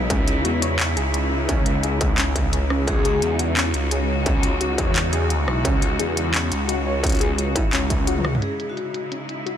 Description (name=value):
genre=half-time drum and bass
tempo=173 BPM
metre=4/4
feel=swing 58% on 16ths, half-time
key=C# minor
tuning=A4 = 438 Hz
part: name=rich studio cello section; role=sustained chords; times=0.0-9.6 s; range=C#3 to F#4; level=-27 LUFS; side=left 1 dB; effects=sidechain pumping
part: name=warbly dusty pluck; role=arpeggios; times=0.0-9.6 s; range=C#4 to C#5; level=-29 LUFS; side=left 2 dB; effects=chorus, tape echo
part: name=phased detuned saw bass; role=bass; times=0.0-8.4 s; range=B1 to E2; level=-23 LUFS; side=equal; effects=phaser
part: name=electronic kick drum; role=drums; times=0.1-8.0 s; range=none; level=-22 LUFS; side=equal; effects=distortion, studio reverb
part: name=industrial drum kit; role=drums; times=0.1-9.5 s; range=handclaps, hi-hat, rim click, toms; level=-26 LUFS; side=left 1 dB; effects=low-pass filter on hats, studio reverb, low-pass filter on snare, low-pass filter on toms
part: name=vibraphone with medium hard mallets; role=melody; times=2.9-4.3, 8.4-9.0 s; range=F#4 to C#5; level=-30 LUFS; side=left 2 dB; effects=tape echo
room=little or no reverb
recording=none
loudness=-19 LUFS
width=side -9 dB against mid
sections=0.0-8.4 A section; 8.4-9.6 B section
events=drop 0.0-8.4; drum fill 8.2; band accent 8.3; filter sweep on synth pluck 8.4-9.6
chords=0.0 C#m